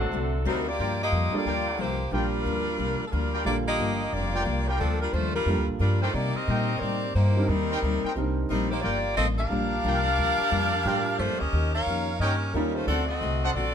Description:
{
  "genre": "jazz, big band swing",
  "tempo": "179 BPM",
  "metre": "4/4",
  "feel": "swing 64% on 8ths",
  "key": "G minor",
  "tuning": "A4 = 440 Hz",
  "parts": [
    { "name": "picked steel-string acoustic guitar", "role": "accompaniment", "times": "0.0-13.7 s", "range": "G2 to G4", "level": "-33 LUFS", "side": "left 6 dB", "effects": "none" },
    { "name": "warm saxophone section", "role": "sustained chords", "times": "0.0-0.6 s", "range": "F#3 to C5", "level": "-34 LUFS", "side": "right 1 dB", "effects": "none" },
    { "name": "upright bass", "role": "bass", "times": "0.0-13.7 s", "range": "F1 to C3", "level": "-28 LUFS", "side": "equal", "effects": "none" },
    { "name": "clear saxophone section", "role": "melody", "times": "0.5-13.7 s", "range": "F3 to F5", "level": "-27 LUFS", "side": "equal", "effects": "none" },
    { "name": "clear trumpet section", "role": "stabs", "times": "0.8-13.5 s", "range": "D4 to G5", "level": "-33 LUFS", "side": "equal", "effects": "none" },
    { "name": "warm baby grand piano", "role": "accompaniment", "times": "1.3-12.9 s", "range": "D3 to Bb4", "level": "-32 LUFS", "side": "right 5 dB", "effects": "none" }
  ],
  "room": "light reverb",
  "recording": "close, detailed microphones",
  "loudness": "-24 LUFS",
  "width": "side -8 dB against mid",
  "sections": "0.8-13.7 A section",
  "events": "none",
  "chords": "0.0 D7; 0.8 Gm7; 6.1 Cm7; 8.8 Gm7; 11.5 Eb7; 12.9 D7"
}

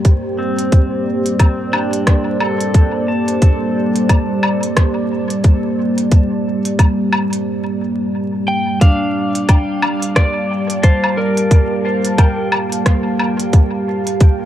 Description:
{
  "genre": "ambient dub",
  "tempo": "89 BPM",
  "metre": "4/4",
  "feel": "swing 60% on 16ths",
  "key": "unclear",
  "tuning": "A4 = 440 Hz",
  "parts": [
    { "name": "deep dark ambient pad", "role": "sustained chords", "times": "0.0-14.5 s", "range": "G3 to A5", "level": "-18 LUFS", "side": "right 1 dB", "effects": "chorus, built-in reverb" },
    { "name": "electronic kick drum", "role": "drums", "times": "0.0-14.4 s", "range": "none", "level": "-10 LUFS", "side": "equal", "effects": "none" },
    { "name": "organic electronic drum kit", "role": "drums", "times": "0.0-14.4 s", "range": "hi-hat, rim click, woodblock", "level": "-20 LUFS", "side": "left 1 dB", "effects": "dub echo" },
    { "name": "pedal steel guitar", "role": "arpeggios", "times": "0.4-14.2 s", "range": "C4 to A5", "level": "-25 LUFS", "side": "left 1 dB", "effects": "vintage 12-bit sampler grit, dub echo" },
    { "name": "electric slide guitar", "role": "melody", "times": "8.5-12.5 s", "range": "Bb4 to G5", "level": "-21 LUFS", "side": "equal", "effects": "dub echo" }
  ],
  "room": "light reverb, digital ambience",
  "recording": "dark, warm production, vinyl crackle",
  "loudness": "-13 LUFS",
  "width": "side -12 dB against mid",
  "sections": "0.0-8.8 A section; 8.8-14.5 B section",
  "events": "break 7.5-8.8",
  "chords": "0.0 Bbadd9/G"
}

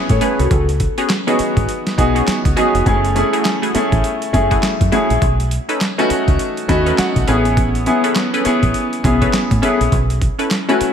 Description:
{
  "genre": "R&B, new jack swing",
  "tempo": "102 BPM",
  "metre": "4/4",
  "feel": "swing 60% on 16ths",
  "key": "F# dorian",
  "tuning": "A4 = 440 Hz",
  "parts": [
    { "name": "clear baby grand piano", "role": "accompaniment", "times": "0.0-10.9 s", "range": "A3 to B5", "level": "-17 LUFS", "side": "left 1 dB", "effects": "lush chorus" },
    { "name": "deep dub fingered electric bass", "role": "bass", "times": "0.1-10.8 s", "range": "E#1 to A2", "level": "-18 LUFS", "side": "equal", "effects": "none" },
    { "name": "boom bap sampler-style drum kit", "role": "drums", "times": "0.1-10.9 s", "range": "handclaps, hi-hat, kick drum, snare drum", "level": "-20 LUFS", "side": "right 1 dB", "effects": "overdrive" },
    { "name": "funky polysynth comp", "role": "stabs", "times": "0.2-10.8 s", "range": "A3 to B4", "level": "-22 LUFS", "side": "equal", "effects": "chorus" }
  ],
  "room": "moderate plate reverb, RT60 2.2 s",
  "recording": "bright 1980s-style digital production",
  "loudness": "-14 LUFS",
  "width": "side -8 dB against mid",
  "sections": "0.0-10.9 A section",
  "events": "grand piano fill 6.4-7.6",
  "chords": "0.0 Amaj9; 0.5 C#7sus4; 2.9 F#m9; 5.2 B9; 7.3 Amaj9; 9.9 B9sus4"
}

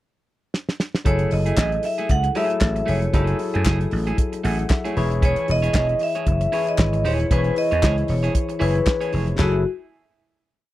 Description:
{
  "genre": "disco",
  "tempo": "115 BPM",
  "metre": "4/4",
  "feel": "swing 56% on 16ths",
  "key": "F# dorian",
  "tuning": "A4 = 440 Hz",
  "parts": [
    { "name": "damped 70s drum kit", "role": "drums", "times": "0.5-9.5 s", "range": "crash cymbal, handclaps, hi-hat, kick drum, snare drum, toms", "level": "-21 LUFS", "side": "equal", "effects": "none" },
    { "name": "barky tine electric piano", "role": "accompaniment", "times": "1.0-9.6 s", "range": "E3 to F#5", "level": "-27 LUFS", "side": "left 5 dB", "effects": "overdrive" },
    { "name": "vibraphone with medium mallets", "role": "melody", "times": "1.1-9.6 s", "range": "F#4 to F#5", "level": "-24 LUFS", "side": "equal", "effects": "none" },
    { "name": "electric guitar at the edge of break-up", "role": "accompaniment", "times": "1.1-9.6 s", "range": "A3 to C#5", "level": "-30 LUFS", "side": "right 4 dB", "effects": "spring reverb" },
    { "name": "vintage slap bass", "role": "bass", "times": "1.1-9.6 s", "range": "D#1 to F#2", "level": "-22 LUFS", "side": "equal", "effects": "none" },
    { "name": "group handclap", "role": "percussion", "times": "1.6-9.6 s", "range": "none", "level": "-31 LUFS", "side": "left 7 dB", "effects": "none" }
  ],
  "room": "little or no reverb",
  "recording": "dry, close 1970s-style studio recording",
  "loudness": "-18 LUFS",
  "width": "side -15 dB against mid",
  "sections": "0.0-1.1 pickup bar; 1.1-9.4 verse; 9.4-10.7 final chord",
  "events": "drum fill 0.5-1.1",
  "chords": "0.0 N.C.; 1.1 F#m9; 5.0 E6; 9.4 F#m9"
}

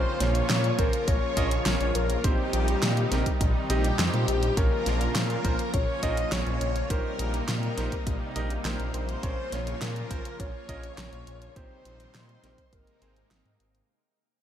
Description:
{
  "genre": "synthwave",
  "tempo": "103 BPM",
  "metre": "4/4",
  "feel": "straight",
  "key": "Bb dorian",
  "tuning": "A4 = 440 Hz",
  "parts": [
    { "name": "soft octave-layered synth lead", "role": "melody", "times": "0.0-13.6 s", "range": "G4 to Eb5", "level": "-33 LUFS", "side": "left 2 dB", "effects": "chorus, tape echo" },
    { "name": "string machine, violins", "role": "second line", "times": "0.0-13.6 s", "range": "G4 to Eb5", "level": "-38 LUFS", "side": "equal", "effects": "ensemble chorus, diffuse ambient delay" },
    { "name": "lush unison pad", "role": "sustained chords", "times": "0.0-13.9 s", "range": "C3 to F4", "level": "-34 LUFS", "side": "equal", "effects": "chorus, sidechain pumping" },
    { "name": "clear electric grand piano", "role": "stabs", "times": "0.0-13.9 s", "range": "C4 to Eb5", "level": "-36 LUFS", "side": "right 2 dB", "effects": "diffuse ambient delay" },
    { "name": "wide detuned saw bass", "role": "bass", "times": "0.0-13.8 s", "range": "Ab1 to Bb2", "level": "-29 LUFS", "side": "equal", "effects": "chorus, sidechain pumping" },
    { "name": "pop drum kit", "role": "drums", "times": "0.2-13.9 s", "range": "handclaps, hi-hat, snare drum", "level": "-32 LUFS", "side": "equal", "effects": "none" },
    { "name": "electronic kick drum", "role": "drums", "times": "0.8-12.8 s", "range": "none", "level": "-28 LUFS", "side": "equal", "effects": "none" }
  ],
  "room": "moderate plate reverb, RT60 2.0 s",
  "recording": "dreamy mix soaked in reverb",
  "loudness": "-24 LUFS",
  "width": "side -10 dB against mid",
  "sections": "0.0-13.9 A section",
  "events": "fade-out 4.6-13.9",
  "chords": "0.0 Bbm; 2.2 Cm/Bb; 4.6 Bbm; 6.9 Eb6/Bb; 9.2 Bbm; 11.6 Cm/Bb; 12.7 Abadd9"
}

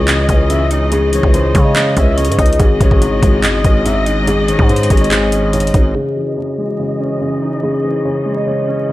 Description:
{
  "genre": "hip hop, trap",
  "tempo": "143 BPM",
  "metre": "4/4",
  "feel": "half-time",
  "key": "C# minor",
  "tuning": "A4 = 437 Hz",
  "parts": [
    { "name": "buzzing kalimba", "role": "melody", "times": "0.0-8.9 s", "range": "E4 to D#5", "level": "-19 LUFS", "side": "left 1 dB", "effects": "low-pass filter" },
    { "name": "breathy flute-like synth lead", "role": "second line", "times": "0.0-5.5 s", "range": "G#4 to E5", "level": "-22 LUFS", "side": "left 4 dB", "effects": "chorus, digital delay" },
    { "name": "felt-muted upright piano", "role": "accompaniment", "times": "0.0-8.9 s", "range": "G#2 to D#4", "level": "-20 LUFS", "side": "equal", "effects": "low-pass filter" },
    { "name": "warm symphonic string section", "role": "sustained chords", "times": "0.0-8.9 s", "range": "E3 to D#5", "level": "-23 LUFS", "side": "equal", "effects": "low-pass filter" },
    { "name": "growling 808-style bass", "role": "bass", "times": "0.0-5.9 s", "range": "G#1 to C#3", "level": "-16 LUFS", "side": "equal", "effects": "none" },
    { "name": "trap drum kit", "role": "drums", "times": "0.1-5.8 s", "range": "handclaps, hi-hat, kick drum", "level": "-14 LUFS", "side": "equal", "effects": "none" }
  ],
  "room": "small room ambience",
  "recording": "vinyl crackle",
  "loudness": "-11 LUFS",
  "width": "side -16 dB against mid",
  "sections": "0.0-6.0 A section; 6.0-8.9 B section",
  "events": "filter sweep 6.0-8.9",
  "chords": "0.0 C#madd9; 2.6 G#sus4; 6.0 C#madd9"
}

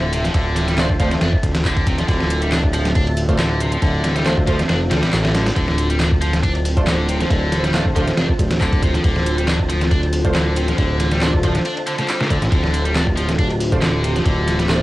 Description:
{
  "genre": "breakbeat, breaks",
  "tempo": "138 BPM",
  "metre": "4/4",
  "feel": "swing 54% on 16ths",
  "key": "D minor",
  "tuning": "A4 = 440 Hz",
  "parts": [
    { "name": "warbly tape-like pad", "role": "sustained chords", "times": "0.0-14.8 s", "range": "D3 to E5", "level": "-26 LUFS", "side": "equal", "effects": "chorus, built-in reverb, phaser, sidechain pumping, cassette tape" },
    { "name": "heavy high-gain guitar", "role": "riff", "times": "0.0-14.8 s", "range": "C3 to D4", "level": "-24 LUFS", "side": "left 1 dB", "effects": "distortion, cassette tape, analog delay" },
    { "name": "fat analog bass", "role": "bass", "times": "0.0-14.8 s", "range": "D1 to D2", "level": "-20 LUFS", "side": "equal", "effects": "none" },
    { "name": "dusty soul sampler-style drum kit", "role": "drums", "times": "0.1-14.8 s", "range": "hi-hat, kick drum, ride cymbal, snare drum", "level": "-20 LUFS", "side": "equal", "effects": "none" },
    { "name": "garage drum kit", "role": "drums", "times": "0.1-14.8 s", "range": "handclaps, hi-hat", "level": "-28 LUFS", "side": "equal", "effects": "none" },
    { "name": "orchestra-hit-like synth stab", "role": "stabs", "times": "0.8-14.8 s", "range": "A3 to C5", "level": "-27 LUFS", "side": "right 2 dB", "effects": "built-in reverb, phaser, cassette tape, analog delay" }
  ],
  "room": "light reverb",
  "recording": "home recording on cassette, vinyl crackle",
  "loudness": "-15 LUFS",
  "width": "side -17 dB against mid",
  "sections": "0.0-14.8 A section",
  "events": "kick drops out 4.7-5.6",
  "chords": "0.0 Dm7"
}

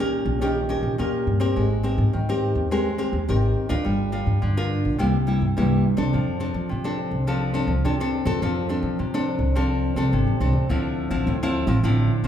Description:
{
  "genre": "samba and choro",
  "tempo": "105 BPM",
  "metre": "4/4",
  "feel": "straight",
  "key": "F major",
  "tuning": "A4 = 445 Hz",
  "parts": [
    { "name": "nylon-string guitar", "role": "accompaniment", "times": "0.0-12.3 s", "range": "G2 to Bb4", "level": "-23 LUFS", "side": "equal", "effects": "none" },
    { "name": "upright bass", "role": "bass", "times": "0.0-12.3 s", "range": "G1 to F3", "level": "-23 LUFS", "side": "equal", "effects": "none" }
  ],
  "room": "wet large studio reverb, RT60 1.3 s",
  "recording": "heard from further back in the room",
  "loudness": "-20 LUFS",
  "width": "side -10 dB against mid",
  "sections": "0.0-10.7 A section; 10.7-12.3 B section",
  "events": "none",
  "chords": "0.0 Eb7; 1.6 Abmaj9; 3.9 Gm7; 5.0 C7; 6.1 F6; 10.7 Dm9"
}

